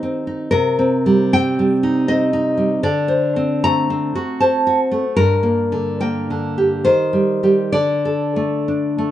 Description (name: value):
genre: romantic piece for solo classical guitar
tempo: 63-82 BPM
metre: 3/4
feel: rubato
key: unclear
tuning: A4 = 440 Hz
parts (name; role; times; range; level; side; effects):
- nylon-string guitar; solo; 0.0-9.1 s; G2 to Bb5; -15 LUFS; equal; none
room: moderate large studio reverb, RT60 0.9 s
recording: band playing live in one room, nothing above 10.7 kHz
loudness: -15 LUFS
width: side -12 dB against mid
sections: 0.0-9.1 A section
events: none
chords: 0.0 Cm/Eb; 0.5 Cm7; 2.8 D7; 5.2 Gm; 6.8 Cm/Eb; 7.7 D5